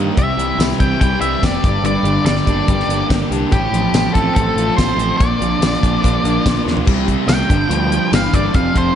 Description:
classic rock; 143 BPM; 4/4; straight; G minor; A4 = 441 Hz
picked steel-string acoustic guitar; accompaniment; 0.0-9.0 s; G2 to Bb4; -26 LUFS; left 5 dB; slapback echo
cranked stack guitar; riff; 0.0-8.9 s; F2 to G4; -23 LUFS; left 9 dB; overdrive
sludgy distorted guitar; riff; 0.0-8.9 s; F2 to F4; -21 LUFS; right 9 dB; overdrive, slapback echo
modern bright picked electric bass; bass; 0.0-8.9 s; F1 to Eb2; -21 LUFS; equal
octave-fuzz lead guitar; melody; 0.2-9.0 s; G4 to G5; -20 LUFS; equal; distortion
damped 70s drum kit; drums; 0.2-8.9 s; crash cymbal, hi-hat, kick drum, snare drum, tambourine, toms; -18 LUFS; equal
moderate concert hall reverb, RT60 2.3 s; big arena sound, nothing above 10.8 kHz; -13 LUFS; side -9 dB against mid
0.0-6.9 A section; 6.9-9.0 B section
drum fill 6.7; lead electric guitar solo 6.9-9.0
0.2 C; 1.6 Gm; 3.5 F/A; 5.2 Bb; 6.9 C; 7.5 Gm

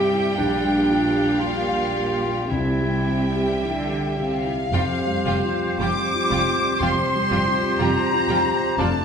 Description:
cinematic; 52-61 BPM; 4/4; rubato; F major from 4.7 s; A4 = 444 Hz
clear clarinet; second line; 0.0-9.0 s; D4 to G4; -26 LUFS; equal
rich studio violin section; second line; 0.0-8.9 s; G4 to G5; -30 LUFS; equal
bright studio viola section; accompaniment; 0.0-8.9 s; F3 to G4; -29 LUFS; right 3 dB
dark grand piano; accompaniment; 0.0-9.0 s; Bb1 to F5; -26 LUFS; left 1 dB
rich studio cello section; bass; 0.0-8.9 s; F2 to D3; -29 LUFS; right 2 dB
warm studio violin section; melody; 4.2-9.0 s; F5 to D6; -26 LUFS; left 4 dB
mellow hollow flute section; second line; 4.2-9.0 s; F5 to D6; -26 LUFS; left 2 dB
warm oboe; second line; 4.7-9.0 s; C5 to D5; -28 LUFS; right 1 dB
dark French horn section; sustained chords; 4.7-9.0 s; G3 to D4; -28 LUFS; right 2 dB
rich studio double bass section; bass; 4.7-8.9 s; F1; -29 LUFS; right 3 dB
wet recital hall reverb, RT60 1.7 s; recorded in a church or concert hall; -19 LUFS; side -6 dB against mid
0.0-4.7 A section; 4.7-9.0 B section
0.4 Gm7/Bb; 2.5 C; 4.7 Fsus2

